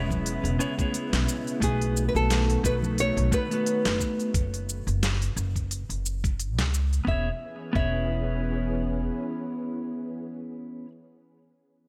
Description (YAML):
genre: sunset chillout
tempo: 88 BPM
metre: 4/4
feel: swing 56% on 16ths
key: E major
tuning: A4 = 440 Hz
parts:
  - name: clean electric guitar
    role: accompaniment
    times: 0.0-10.9 s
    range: A3 to C#5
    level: -33 LUFS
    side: equal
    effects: digital delay
  - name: soft string machine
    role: sustained chords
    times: 0.0-10.2 s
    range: C#3 to G#4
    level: -39 LUFS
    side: equal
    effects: ensemble chorus
  - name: upright bass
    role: bass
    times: 0.0-9.1 s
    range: E1 to C#2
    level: -30 LUFS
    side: equal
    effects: none
  - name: electronic kick drum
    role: drums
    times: 0.1-8.0 s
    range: none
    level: -31 LUFS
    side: equal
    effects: none
  - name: smooth R&B drum kit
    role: drums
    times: 0.1-7.0 s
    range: hi-hat, shaker, snare drum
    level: -33 LUFS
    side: equal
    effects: none
  - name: congas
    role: percussion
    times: 0.1-3.6 s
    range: none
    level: -39 LUFS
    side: equal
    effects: none
  - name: nylon-string guitar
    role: melody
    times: 1.6-10.9 s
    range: G#4 to E5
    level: -32 LUFS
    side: equal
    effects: tape echo
room: light reverb, digital ambience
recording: none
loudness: -27 LUFS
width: mono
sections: 0.0-7.1 A section; 7.1-9.8 B section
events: none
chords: 0.0 E6; 1.6 B7; 4.3 F#5; 7.1 E6